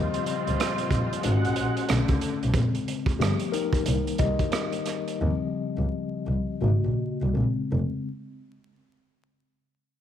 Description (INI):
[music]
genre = R&B, neo-soul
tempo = 78-92 BPM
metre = 4/4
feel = swing 62% on 16ths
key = unclear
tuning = A4 = 440 Hz
[part]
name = mellow tine electric piano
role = accompaniment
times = 0.0-8.1 s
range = Db3 to Eb5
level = -29 LUFS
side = left 6 dB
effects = medium stereo tremolo
[part]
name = muted studio string section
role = sustained chords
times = 0.0-2.5 s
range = Bb2 to Gb5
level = -32 LUFS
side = right 4 dB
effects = none
[part]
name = crunchy breakbeat drum kit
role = drums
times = 0.1-5.2 s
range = hi-hat, kick drum, rim click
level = -29 LUFS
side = right 2 dB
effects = none
[part]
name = dark double bass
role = bass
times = 0.5-7.8 s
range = F1 to Eb2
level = -26 LUFS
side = right 1 dB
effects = none
[sound]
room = light reverb, small room reverb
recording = 1960s-style stereo, vinyl crackle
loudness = -24 LUFS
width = side -10 dB against mid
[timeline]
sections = 0.0-8.1 A section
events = tine electric piano solo 0.0-8.1; slowing down 2.5-8.1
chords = 0.0 Eb13; 1.2 Ab7sus4; 1.9 Bm9; 2.5 Bbm9; 3.2 G7; 3.8 Cm7 (rootless); 5.2 Eb13; 6.6 Ab7sus4 (rootless); 7.3 Bbm9 (rootless)